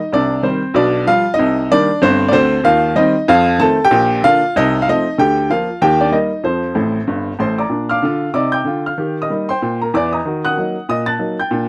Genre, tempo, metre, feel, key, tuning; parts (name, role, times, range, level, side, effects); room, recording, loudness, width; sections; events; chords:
jazz, stride piano; 190 BPM; 4/4; swing 59% on 8ths; Bb major; A4 = 440 Hz
clear upright piano; solo; 0.0-11.7 s; G1 to A6; -16 LUFS; equal
light reverb; dry, close 1970s-style studio recording; -16 LUFS; mono
0.0-7.7 A section; 7.7-11.7 B section
upright piano fill 6.8-7.7
0.1 Cm; 0.8 G7/B; 1.4 Cm7; 2.6 Cm/Eb; 3.3 F7; 3.9 Bb; 4.5 F7/C; 5.2 Bb/D; 5.8 Eb; 6.4 F; 7.7 Bb; 9.0 Eb; 10.2 Ebm